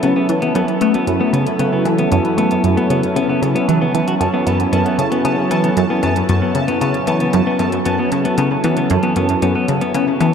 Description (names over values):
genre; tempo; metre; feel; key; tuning
ambient, sequencer-driven space music; 115 BPM; 4/4; straight; unclear; A4 = 440 Hz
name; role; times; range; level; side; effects
phased analog pad; sustained chords; 0.0-10.3 s; F#3 to A4; -19 LUFS; right 1 dB; phaser, chorus, shimmer reverb
clean electric guitar; arpeggios; 0.0-10.3 s; F#3 to F#4; -20 LUFS; left 2 dB; auto-pan, tape echo, shimmer reverb
tight sequenced synth; riff; 0.0-10.3 s; F#2 to A3; -18 LUFS; left 1 dB; chorus, phaser, tape echo, shimmer reverb
electronic hi-hat and percussion blips; percussion; 0.0-10.3 s; none; -33 LUFS; left 2 dB; tape echo
pulsing gated texture; texture; 0.0-10.3 s; A5; -26 LUFS; right 2 dB; chorus, built-in reverb, shimmer reverb
room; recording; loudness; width
wet lush hall reverb, RT60 2.7 s; dark, warm production; -14 LUFS; side -7 dB against mid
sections
0.0-10.3 A section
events
none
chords
0.0 F#m7